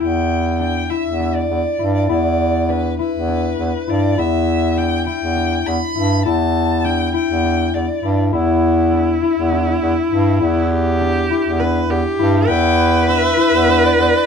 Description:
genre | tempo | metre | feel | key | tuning
contemporary instrumental, chamber music in an uneven meter | 202 BPM (eighths) | 7/8 | straight | E minor | A4 = 442 Hz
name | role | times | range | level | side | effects
rich violin | melody | 0.0-8.2, 12.5-14.3 s | B4 to B5 | -22 LUFS | left 1 dB | none
concert harp | arpeggios | 0.0-14.3 s | C4 to A4 | -19 LUFS | left 7 dB | none
clear bass clarinet | bass | 0.0-14.1 s | E2 to G2 | -18 LUFS | right 2 dB | none
clear viola | second line | 8.3-14.3 s | E4 to B4 | -19 LUFS | right 3 dB | none
room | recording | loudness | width
moderate small room reverb, RT60 0.5 s | heard from further back in the room | -14 LUFS | side -6 dB against mid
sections
0.0-14.3 A section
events
none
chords
0.0 Em7

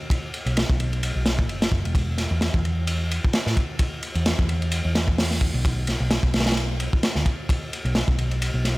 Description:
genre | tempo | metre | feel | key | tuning
breakbeat, breaks | 130 BPM | 4/4 | swing 55% on 16ths | unclear | A4 = 440 Hz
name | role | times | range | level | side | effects
crunchy breakbeat drum kit | drums | 0.1-8.8 s | hi-hat, kick drum, ride cymbal, snare drum | -23 LUFS | equal | none
hollow-body short-scale picked electric bass | bass | 0.5-8.8 s | E1 to A2 | -24 LUFS | equal | none
room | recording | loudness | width
little or no reverb | none | -21 LUFS | side -21 dB against mid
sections
0.0-8.8 A section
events
none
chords
none

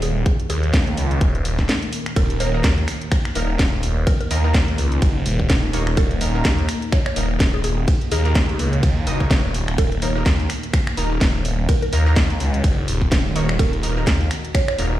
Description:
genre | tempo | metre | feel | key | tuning
bass house | 126 BPM | 4/4 | swing 57% on 16ths | Eb minor | A4 = 438 Hz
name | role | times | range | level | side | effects
mallet-like synth pluck | melody | 0.0-14.7 s | Ab4 to Db5 | -29 LUFS | right 2 dB | chorus, phaser, vintage 12-bit sampler grit, ping-pong delay
deep dark ambient pad | sustained chords | 0.0-15.0 s | Eb3 to Gb5 | -30 LUFS | equal | chorus, built-in reverb, sidechain pumping
phased detuned saw bass | bass | 0.0-15.0 s | Eb1 to Eb2 | -20 LUFS | equal | phaser, overdrive, sidechain pumping
garage drum kit | drums | 0.0-14.9 s | finger snaps, hi-hat, ride cymbal, snare drum | -25 LUFS | equal | none
electronic kick drum | drums | 0.3-14.7 s | none | -18 LUFS | equal | none
orchestra-hit-like synth stab | stabs | 2.4-15.0 s | Bb3 to Eb5 | -29 LUFS | equal | built-in reverb, sidechain pumping, ping-pong delay
room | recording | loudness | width
little or no reverb | played on a big sound system in a bare room, stone room reverb | -17 LUFS | side -14 dB against mid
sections
0.0-15.0 A section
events
break 1.7-2.2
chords
0.0 Eb5

